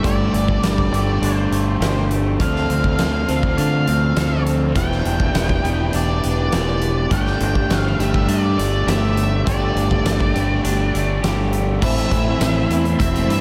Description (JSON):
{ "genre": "rock, shoegaze and dream pop", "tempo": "102 BPM", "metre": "4/4", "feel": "straight", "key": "G mixolydian", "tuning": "A4 = 440 Hz", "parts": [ { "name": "octave-fuzz lead guitar", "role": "melody", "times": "0.0-13.4 s", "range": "D5 to G5", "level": "-28 LUFS", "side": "equal", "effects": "distortion, delay" }, { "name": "clean electric guitar", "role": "arpeggios", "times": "0.0-13.4 s", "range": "E3 to A4", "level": "-32 LUFS", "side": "equal", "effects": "lush chorus, delay" }, { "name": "biting overdriven guitar", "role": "riff", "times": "0.0-13.4 s", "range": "A2 to A4", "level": "-27 LUFS", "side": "equal", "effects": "lush chorus" }, { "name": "electric guitar through a small old amp", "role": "riff", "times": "0.0-13.4 s", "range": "A2 to G4", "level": "-27 LUFS", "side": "equal", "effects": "reverse reverb" }, { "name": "growling fingered electric bass", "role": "bass", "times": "0.0-13.4 s", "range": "E1 to D3", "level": "-23 LUFS", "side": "equal", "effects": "overdrive" }, { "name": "huge arena drum kit", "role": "drums", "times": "0.0-13.4 s", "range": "crash cymbal, hi-hat, kick drum, snare drum", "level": "-26 LUFS", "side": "equal", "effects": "none" }, { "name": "string machine, cellos", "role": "sustained chords", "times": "11.8-13.4 s", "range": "E4 to C6", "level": "-30 LUFS", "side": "equal", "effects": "none" }, { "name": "tambourine", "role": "percussion", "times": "12.4-12.5 s", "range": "none", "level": "-37 LUFS", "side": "equal", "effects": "none" } ], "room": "moderate lush hall reverb, RT60 3.0 s", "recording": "dreamy mix soaked in reverb", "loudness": "-19 LUFS", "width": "mono", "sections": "0.0-11.8 A section; 11.8-13.4 B section", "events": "none", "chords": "0.0 Gsus2; 2.4 Dm7; 4.8 Em7; 7.1 Gsus2; 11.8 Am" }